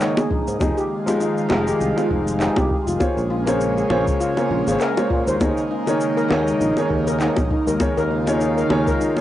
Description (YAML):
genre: sunset chillout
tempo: 100 BPM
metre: 4/4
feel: swing 56% on 16ths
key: unclear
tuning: A4 = 440 Hz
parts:
  - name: warm concert grand piano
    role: accompaniment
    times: 0.0-9.2 s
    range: Eb3 to Db5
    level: -22 LUFS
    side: equal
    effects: auto-pan, cassette tape, analog delay
  - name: airy breathy pad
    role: sustained chords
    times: 0.0-9.2 s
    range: Db3 to F4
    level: -25 LUFS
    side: right 2 dB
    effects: chorus, phaser, cassette tape
  - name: electronic handclaps and shaker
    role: drums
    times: 0.0-9.2 s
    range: none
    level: -30 LUFS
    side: equal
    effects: cassette tape
  - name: steel pan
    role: arpeggios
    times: 0.2-9.2 s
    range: Eb4 to C5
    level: -25 LUFS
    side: left 3 dB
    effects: cassette tape, analog delay
  - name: bongos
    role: percussion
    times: 0.2-9.2 s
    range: none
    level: -23 LUFS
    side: left 1 dB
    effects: none
  - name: sustaining fretless electric bass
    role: bass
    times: 0.3-8.9 s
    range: F1 to Bb2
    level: -24 LUFS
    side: equal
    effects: none
  - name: electronic kick drum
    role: drums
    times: 0.3-9.0 s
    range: none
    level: -25 LUFS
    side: equal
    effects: cassette tape
room: moderate studio reverb, RT60 0.6 s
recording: home recording on cassette, nothing above 10.3 kHz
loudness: -18 LUFS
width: side -13 dB against mid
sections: 0.0-9.2 A section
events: none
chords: 0.0 Eb7sus4; 0.6 Fm9; 3.0 Bbm9; 5.4 Eb7sus4